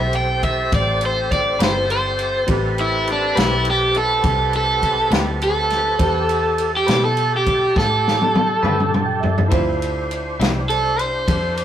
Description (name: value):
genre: slow blues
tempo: 68 BPM (dotted quarters)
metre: 12/8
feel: straight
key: A minor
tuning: A4 = 435 Hz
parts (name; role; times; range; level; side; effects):
- overdriven semi-hollow guitar; melody; 0.0-11.6 s; D4 to G5; -19 LUFS; right 1 dB; analog delay
- warm grand piano; accompaniment; 0.0-11.6 s; C4 to B5; -28 LUFS; right 3 dB; none
- tonewheel organ; sustained chords; 0.0-11.6 s; C4 to C5; -26 LUFS; equal; overdrive, chorus vibrato, slow rotary speaker
- vintage muted fingered electric bass; bass; 0.0-11.6 s; G1 to B2; -25 LUFS; equal; none
- vintage drum kit; drums; 0.1-11.6 s; kick drum, ride cymbal, snare drum, toms; -22 LUFS; left 1 dB; none
- clean electric guitar; accompaniment; 1.6-10.6 s; D3 to B4; -26 LUFS; left 3 dB; tremolo
room: moderate small room reverb, RT60 0.5 s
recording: rough rehearsal-room recording, warm saturation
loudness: -16 LUFS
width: side -10 dB against mid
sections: 0.0-11.6 A section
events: overdriven electric guitar solo 0.0-11.6; drum fill 7.8-9.5; grand piano fill 8.6-9.5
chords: 0.0 Am9; 9.5 Dm9